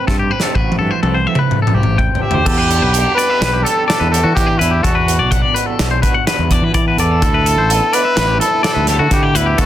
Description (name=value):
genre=math rock and midwest emo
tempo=126 BPM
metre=5/4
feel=straight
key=unclear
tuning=A4 = 439 Hz
part: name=electric guitar through a small old amp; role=accompaniment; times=0.0-9.7 s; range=E2 to G4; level=-24 LUFS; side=right 7 dB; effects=tremolo, plate reverb
part: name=twangy electric guitar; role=arpeggios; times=0.0-9.7 s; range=F#4 to G5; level=-19 LUFS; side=left 6 dB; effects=plate reverb
part: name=growling fingered electric bass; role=bass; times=0.1-9.7 s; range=A1 to E3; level=-17 LUFS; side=equal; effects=overdrive
part: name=modern studio drum kit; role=drums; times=0.1-9.7 s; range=crash cymbal, hi-hat, kick drum, snare drum, toms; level=-17 LUFS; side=equal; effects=none
part: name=clear trumpet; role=melody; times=2.2-9.7 s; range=E4 to B4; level=-17 LUFS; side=equal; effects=plate reverb
room=light reverb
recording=dense, heavily limited modern master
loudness=-12 LUFS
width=side -12 dB against mid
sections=0.0-2.5 A section; 2.5-9.7 B section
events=drum fill 0.1-2.5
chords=0.0 C6; 2.5 Em11; 7.2 Dsus2